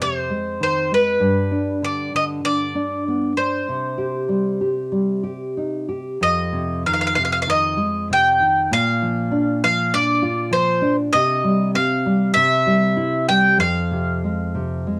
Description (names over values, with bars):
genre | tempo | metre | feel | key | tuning
fado | 98 BPM | 4/4 | rubato | C harmonic minor, F dorian from 6.2 s | A4 = 438 Hz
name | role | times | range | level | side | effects
bowl-back mandolin | melody | 0.0-15.0 s | B4 to G5 | -21 LUFS | equal | none
nylon-string guitar | accompaniment | 0.0-15.0 s | F2 to G4 | -24 LUFS | equal | cassette tape
room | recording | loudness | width
moderate studio reverb, RT60 0.6 s | home recording on cassette | -20 LUFS | mono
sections
0.0-6.2 A section; 6.2-15.0 B section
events
none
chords
0.0 Fm7; 1.2 G; 3.7 C5; 6.2 Fm7; 8.7 Bb; 11.1 Csus4; 12.4 C; 13.6 Fm